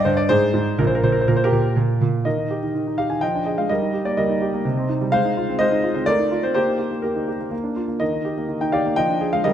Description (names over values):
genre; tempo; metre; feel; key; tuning
classical-period piano sonatina; 125 BPM; 3/4; straight; Eb major; A4 = 438 Hz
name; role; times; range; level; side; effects
clear concert grand piano; solo; 0.0-9.5 s; Bb1 to Ab5; -18 LUFS; equal; none
room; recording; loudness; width
moderate scoring stage reverb, RT60 1.8 s; none; -18 LUFS; side -10 dB against mid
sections
0.0-2.3 A section; 2.3-9.5 B section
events
none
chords
0.3 N.C.; 0.8 Gmadd11/Bb; 1.8 N.C.; 2.3 Eb; 3.2 Ddim/F; 3.7 Eb/G; 4.6 Cm; 5.1 Fm7/Ab; 6.1 F7/A; 6.6 Eb/Bb; 7.5 Bb; 8.0 Eb; 9.0 Ddim/F